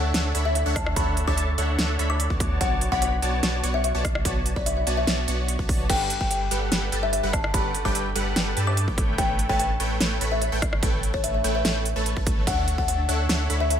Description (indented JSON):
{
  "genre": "future bass",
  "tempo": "146 BPM",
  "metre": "4/4",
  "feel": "half-time",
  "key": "G lydian",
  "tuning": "A4 = 440 Hz",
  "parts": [
    { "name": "supersaw stab", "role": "riff", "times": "0.0-13.8 s", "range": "G3 to C#6", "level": "-28 LUFS", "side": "right 1 dB", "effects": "sidechain pumping" },
    { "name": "saturated sub bass", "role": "bass", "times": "0.0-13.8 s", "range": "G1 to G2", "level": "-26 LUFS", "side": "equal", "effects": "tube saturation, sidechain pumping" },
    { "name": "big-room dance drum kit", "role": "drums", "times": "0.1-13.8 s", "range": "crash cymbal, hi-hat, ride cymbal, rim click, snare drum", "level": "-28 LUFS", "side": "right 1 dB", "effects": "none" },
    { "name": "kalimba", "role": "melody", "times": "0.5-13.8 s", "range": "C#5 to D6", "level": "-28 LUFS", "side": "left 3 dB", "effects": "sidechain pumping, ping-pong delay" },
    { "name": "electronic kick drum", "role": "drums", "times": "0.8-12.9 s", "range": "none", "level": "-27 LUFS", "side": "equal", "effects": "none" }
  ],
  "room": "light reverb, digital ambience",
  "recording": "none",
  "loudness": "-21 LUFS",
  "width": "side -9 dB against mid",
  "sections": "0.0-13.8 A section",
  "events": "none",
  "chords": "0.0 Dmaj7; 2.4 Bm7; 5.9 Gmaj7; 9.0 A9; 12.5 Dmaj7",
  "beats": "0.14 0.55 | 0.96 1.38 1.79 2.20 | 2.61 3.02 3.43 3.84 | 4.25 4.66 5.07 5.49 | 5.90 6.31 6.72 7.13 | 7.54 7.95 8.36 8.77 | 9.18 9.59 10.01 10.42 | 10.83 11.24 11.65 12.06 | 12.47 12.88 13.29 13.70"
}